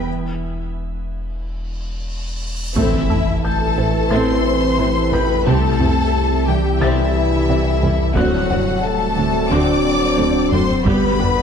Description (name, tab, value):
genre	cinematic, hybrid orchestral and electronic film score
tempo	89 BPM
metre	4/4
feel	straight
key	unclear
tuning	A4 = 440 Hz
part	warm symphonic violin section	melody	0.0-11.4 s	E5 to D6	-24 LUFS	left 5 dB	none
part	warm symphonic violin section	second line	0.0-11.4 s	E4 to D5	-25 LUFS	left 4 dB	none
part	warm symphonic viola section	accompaniment	0.0-11.3 s	E3 to A4	-25 LUFS	right 1 dB	none
part	organ-like drone	sustained chords	0.0-11.4 s	C3 to D5	-27 LUFS	equal	ensemble chorus, built-in reverb
part	warm sub bass	bass	0.0-11.4 s	D1 to C2	-23 LUFS	equal	none
part	warm symphonic cello section	bass	0.0-11.3 s	G2 to D3	-27 LUFS	right 2 dB	none
part	warm symphonic double bass section	bass	0.0-11.3 s	G1 to D2	-26 LUFS	right 3 dB	none
part	felt-muted upright piano	texture	0.0-10.9 s	G5 to A6	-32 LUFS	left 2 dB	digital delay
part	cymbal swell and impact	sound effects	1.8-5.5 s	none	-27 LUFS	equal	none
part	mellow French horn section	sustained chords	2.8-11.4 s	E3 to B4	-23 LUFS	left 4 dB	none
part	mellow trombone section	sustained chords	2.8-11.4 s	C3 to C4	-24 LUFS	right 4 dB	none
part	resonant blip pluck	arpeggios	2.8-11.4 s	C3 to A4	-26 LUFS	right 1 dB	phaser, digital delay
part	taiko ensemble	drums	2.8-11.4 s	none	-24 LUFS	left 1 dB	none
room	wet scoring stage reverb, RT60 1.6 s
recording	dark, warm production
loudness	-15 LUFS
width	side -7 dB against mid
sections	0.0-2.8 A section; 2.8-11.4 B section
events	break 0.1-2.8; cymbal swell 1.8-2.8; impact 2.8-5.5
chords	0.1 N.C.; 2.8 Am; 5.5 C; 8.2 D7; 10.9 G